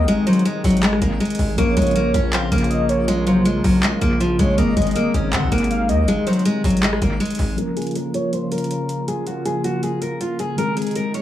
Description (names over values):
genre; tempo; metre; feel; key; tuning
hip hop, trap; 160 BPM; 4/4; half-time; Bb minor; A4 = 440 Hz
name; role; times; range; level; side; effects
picked steel-string acoustic guitar; melody; 0.0-11.2 s; F3 to Db5; -20 LUFS; equal; low-pass filter, analog delay
warm velvety synth lead; second line; 0.0-6.4 s; C5 to Gb5; -26 LUFS; equal; chorus, analog delay
mellow tine electric piano; accompaniment; 0.0-11.2 s; Eb3 to Bb4; -26 LUFS; left 1 dB; medium stereo tremolo, low-pass filter
warm analog pad; sustained chords; 0.0-11.2 s; C3 to F4; -26 LUFS; equal; chorus, low-pass filter
distorted 808-style bass; bass; 0.0-7.6 s; Ab1 to Eb3; -21 LUFS; equal; distortion
trap drum kit; drums; 0.1-11.2 s; handclaps, hi-hat, rim click; -28 LUFS; equal; analog delay
room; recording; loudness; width
light reverb; echo-heavy mix, small room ambience; -17 LUFS; side -12 dB against mid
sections
0.0-7.6 A section; 7.6-11.2 B section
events
filter sweep 7.6-11.2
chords
0.0 Ab; 1.6 Bbm; 4.6 Ab; 7.6 Bbm; 10.6 Ab